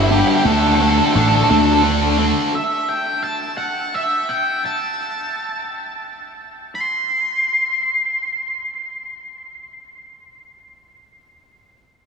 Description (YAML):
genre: post-rock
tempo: 57 BPM (dotted quarters)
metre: 6/8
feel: straight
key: unclear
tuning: A4 = 439 Hz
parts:
  - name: octave-fuzz lead guitar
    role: melody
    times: 0.0-10.7 s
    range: E4 to C6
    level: -20 LUFS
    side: right 1 dB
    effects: distortion, analog delay
  - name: tight distorted guitar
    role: riff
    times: 0.0-2.5 s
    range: G2 to D4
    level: -18 LUFS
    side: left 2 dB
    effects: distortion
  - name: fingered electric bass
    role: bass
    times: 0.0-2.3 s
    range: G1 to D2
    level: -18 LUFS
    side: right 1 dB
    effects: none
room: wet huge ambient reverb, RT60 7.6 s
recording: dreamy mix soaked in reverb, small room ambience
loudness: -16 LUFS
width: side -6 dB against mid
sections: 0.0-2.5 A section; 2.5-6.8 B section; 6.8-11.0 C section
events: none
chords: 0.5 D5; 2.5 N.C.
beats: | 0.46 1.50 | 2.55 3.60 | 4.65 5.70 | 6.76 7.82 | 8.88 9.94